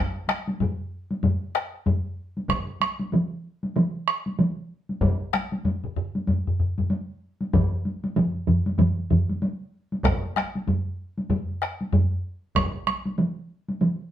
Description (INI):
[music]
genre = japanese traditional, taiko drum ensemble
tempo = 95 BPM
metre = 4/4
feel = swing 60% on 16ths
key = none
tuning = none
[part]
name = solo taiko drums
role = percussion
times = 0.3-14.0 s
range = none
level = -28 LUFS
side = left 1 dB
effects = none
[part]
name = taiko ensemble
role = percussion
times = 0.3-12.1 s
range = none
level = -24 LUFS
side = left 1 dB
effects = none
[part]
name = solo taiko drums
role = percussion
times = 2.5-14.0 s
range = none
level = -24 LUFS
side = right 3 dB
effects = none
[part]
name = taiko ensemble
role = percussion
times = 2.5-12.7 s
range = none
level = -26 LUFS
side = equal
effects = none
[sound]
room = wet studio reverb, RT60 0.6 s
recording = band playing live in one room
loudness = -23 LUFS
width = side -11 dB against mid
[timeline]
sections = 0.0-14.1 A section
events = none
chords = none